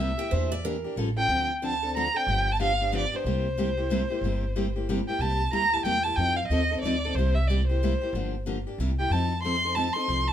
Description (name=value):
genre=acoustic string swing (jazz manouche)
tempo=184 BPM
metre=3/4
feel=swing 61% on 8ths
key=C mixolydian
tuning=A4 = 440 Hz
part: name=warm violin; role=melody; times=0.0-10.3 s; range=C5 to C6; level=-27 LUFS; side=right 1 dB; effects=none
part: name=picked steel-string acoustic guitar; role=accompaniment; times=0.0-10.3 s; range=C3 to A4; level=-30 LUFS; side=left 2 dB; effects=none
part: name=upright bass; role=bass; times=0.0-10.3 s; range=G1 to F2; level=-28 LUFS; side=equal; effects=none
part: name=picked steel-string acoustic guitar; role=second line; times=0.2-1.0 s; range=Bb4 to G5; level=-32 LUFS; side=right 7 dB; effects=none
room=light reverb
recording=minimal, uncompressed stereo recording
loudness=-24 LUFS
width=side -10 dB against mid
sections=0.0-5.2 A section; 5.2-10.3 A section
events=none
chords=0.3 Em7b5; 1.0 Aaug7; 1.3 Dm7; 2.3 G7; 3.2 C7; 6.2 F7; 7.2 C7; 8.1 Gm7; 8.8 C7; 9.1 F7